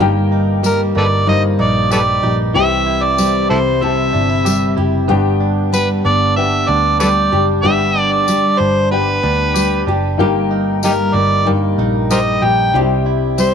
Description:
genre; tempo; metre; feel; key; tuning
acoustic pop; 94 BPM; 4/4; straight; unclear; A4 = 440 Hz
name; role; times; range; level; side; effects
nylon-string guitar; accompaniment; 0.0-13.5 s; G2 to G4; -17 LUFS; left 2 dB; none
warm upright piano; accompaniment; 0.0-13.5 s; D4 to A5; -24 LUFS; left 14 dB; none
direct-recorded clean electric guitar; arpeggios; 0.0-13.5 s; E3 to G4; -23 LUFS; right 13 dB; slapback echo
vintage muted picked electric bass; bass; 0.0-13.5 s; F#1 to D2; -19 LUFS; right 1 dB; none
tambourine; percussion; 0.6-13.5 s; none; -26 LUFS; left 15 dB; none
overdriven harmonica; melody; 0.7-13.5 s; Eb4 to G5; -16 LUFS; right 1 dB; none
room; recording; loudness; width
light reverb, small room ambience; 1960s-style stereo with parts hard left and right; -12 LUFS; side -7 dB against mid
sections
0.0-13.5 A section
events
none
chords
0.0 Eb/G; 2.6 C; 5.1 G; 10.2 Eb/G; 12.7 C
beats
| 0.01 0.65 1.28 1.92 | 2.55 3.19 3.83 4.46 | 5.10 5.73 6.37 7.00 | 7.64 8.28 8.91 9.55 | 10.19 10.83 11.47 12.10 | 12.74 13.38

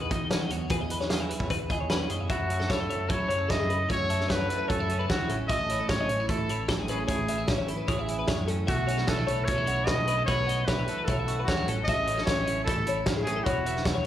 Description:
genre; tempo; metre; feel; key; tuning
math rock and midwest emo; 150 BPM; 4/4; straight; unclear; A4 = 440 Hz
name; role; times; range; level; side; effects
twelve-string electric guitar; accompaniment; 0.0-14.1 s; E2 to B4; -33 LUFS; right 5 dB; lush chorus, slapback echo
twelve-string electric guitar; arpeggios; 0.0-14.1 s; G#4 to E5; -33 LUFS; left 6 dB; analog chorus, slapback echo
picked electric bass; bass; 0.0-14.0 s; E1 to F#3; -32 LUFS; equal; none
loose indie drum kit; drums; 0.1-13.9 s; hi-hat, kick drum, snare drum; -30 LUFS; equal; none
bright trumpet; melody; 2.3-13.8 s; F#4 to D#5; -30 LUFS; equal; slapback echo, tape echo
room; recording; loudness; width
little or no reverb; live gig heard through the venue's PA, club reverb; -25 LUFS; side -11 dB against mid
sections
0.0-2.3 A section; 2.3-14.1 B section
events
none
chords
0.0 G#m7/E; 0.7 E6; 2.3 F#m7; 5.3 Amaj7; 8.7 B7sus4; 11.7 A; 13.5 Esus2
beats
0.31 | 0.70 1.10 1.50 1.90 | 2.30 2.70 3.10 3.50 | 3.90 4.30 4.70 5.09 | 5.50 5.89 6.29 6.69 | 7.09 7.49 7.89 8.29 | 8.69 9.09 9.48 9.88 | 10.28 10.68 11.08 11.47 | 11.87 12.27 12.67 13.06 | 13.46 13.86

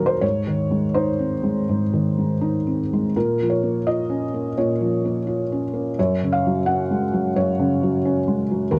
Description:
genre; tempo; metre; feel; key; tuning
neoclassical minimalist piano; 85 BPM; 4/4; uneven beats, rubato; unclear; A4 = 441 Hz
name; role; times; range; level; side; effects
felt-muted upright piano; solo; 0.0-8.8 s; Eb2 to Gb5; -22 LUFS; equal; none
room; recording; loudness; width
light reverb; cassette tape; -22 LUFS; mono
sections
0.0-8.8 A section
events
none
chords
0.2 Ab; 3.1 Bbm; 6.0 Gbsus2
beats
| 0.23 0.95 1.68 2.42 | 3.15 3.86 4.57 5.27 | 5.97 6.67 7.36 8.05 | 8.74

